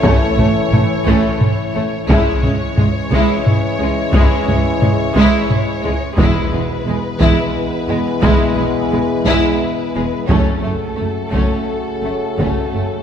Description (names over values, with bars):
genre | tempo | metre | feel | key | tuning
cinematic, epic orchestral film score | 58 BPM (dotted quarters) | 6/8 | straight | unclear | A4 = 440 Hz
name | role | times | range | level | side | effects
warm symphonic violin section | melody | 0.0-13.0 s | A4 to C#5 | -25 LUFS | left 4 dB | none
warm symphonic violin section | second line | 0.0-12.8 s | G#3 to E4 | -23 LUFS | left 1 dB | none
clear symphonic viola section | accompaniment | 0.0-12.8 s | G#3 to A3 | -23 LUFS | right 3 dB | none
mellow French horn section | sustained chords | 0.0-13.0 s | B3 to F#4 | -23 LUFS | left 5 dB | none
warm trombone section | sustained chords | 0.0-13.0 s | C#3 to A3 | -24 LUFS | right 1 dB | none
warm chamber double bass section | bass | 0.0-12.8 s | E1 to C#2 | -24 LUFS | right 3 dB | none
warm symphonic cello section | bass | 0.0-12.8 s | C#2 to A2 | -23 LUFS | right 3 dB | none
taiko ensemble | drums | 0.0-13.0 s | none | -17 LUFS | equal | none
timpani | percussion | 6.2-7.2 s | E2 | -31 LUFS | equal | none
room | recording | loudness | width
wet scoring stage reverb, RT60 2.0 s | heard from further back in the room | -13 LUFS | side -8 dB against mid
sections
0.0-13.0 A section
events
none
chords
0.0 A; 2.1 C#m; 6.2 E; 10.3 F#m